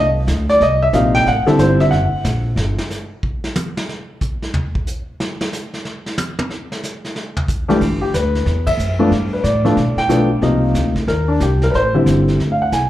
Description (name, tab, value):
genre	jazz piano trio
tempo	183 BPM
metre	4/4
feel	swing 64% on 8ths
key	unclear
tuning	A4 = 436 Hz
part	warm baby grand piano	melody	0.0-2.4, 7.7-12.9 s	G2 to Ab5	-15 LUFS	left 1 dB	slapback echo
part	upright bass	bass	0.0-2.8, 7.8-12.9 s	F#1 to B2	-18 LUFS	equal	none
part	vintage brush drum kit	drums	0.3-12.9 s	brushed snare drum, crash cymbal, hi-hat, kick drum, ride cymbal, snare drum, toms	-24 LUFS	equal	none
room	light reverb, small room ambience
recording	live gig heard through the venue's PA, club reverb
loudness	-15 LUFS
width	side -13 dB against mid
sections	0.0-7.8 A section; 7.8-12.9 B section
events	grand piano solo 0.0-7.8; drum solo 2.6-7.8; band accent 8.6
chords	0.0 Cm7; 1.3 Am7; 1.9 F#; 2.6 N.C.; 7.8 G6; 9.1 G7; 10.4 Cm7; 11.7 Am7; 12.4 D5